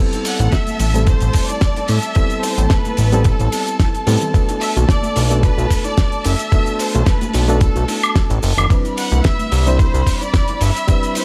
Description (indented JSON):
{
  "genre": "nu-disco, nu disco",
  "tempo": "110 BPM",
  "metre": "4/4",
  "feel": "swing 53% on 16ths",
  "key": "A dorian",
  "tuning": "A4 = 437 Hz",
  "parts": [
    { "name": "reed electric piano", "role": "accompaniment", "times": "0.0-11.2 s", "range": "G3 to C5", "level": "-26 LUFS", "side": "equal", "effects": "spring reverb, sidechain pumping" },
    { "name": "dark studio string section", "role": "sustained chords", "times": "0.0-11.2 s", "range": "A4 to B5", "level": "-30 LUFS", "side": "equal", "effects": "sidechain pumping" },
    { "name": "damped 70s drum kit", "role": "drums", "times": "0.1-11.2 s", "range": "cabasa, hi-hat, ride cymbal, snare drum, woodblock", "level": "-26 LUFS", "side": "equal", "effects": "none" },
    { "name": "bongos, tambourine and congas", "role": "percussion", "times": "0.1-11.2 s", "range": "none", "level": "-32 LUFS", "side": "equal", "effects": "none" },
    { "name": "clear studio violin section", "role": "melody", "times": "0.3-11.2 s", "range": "A4 to F#5", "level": "-28 LUFS", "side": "equal", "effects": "analog delay" },
    { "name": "fat analog bass", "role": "bass", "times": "0.4-10.7 s", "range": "F#1 to A2", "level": "-18 LUFS", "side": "equal", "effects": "sidechain pumping" },
    { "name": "electronic kick drum", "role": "drums", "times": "0.5-11.0 s", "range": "none", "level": "-18 LUFS", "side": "equal", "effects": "overdrive" }
  ],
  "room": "studio ambience",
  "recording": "none",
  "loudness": "-16 LUFS",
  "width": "mono",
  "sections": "0.0-11.2 A section",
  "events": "none",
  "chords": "0.0 Am7; 4.3 Bm7; 8.7 Cmaj7"
}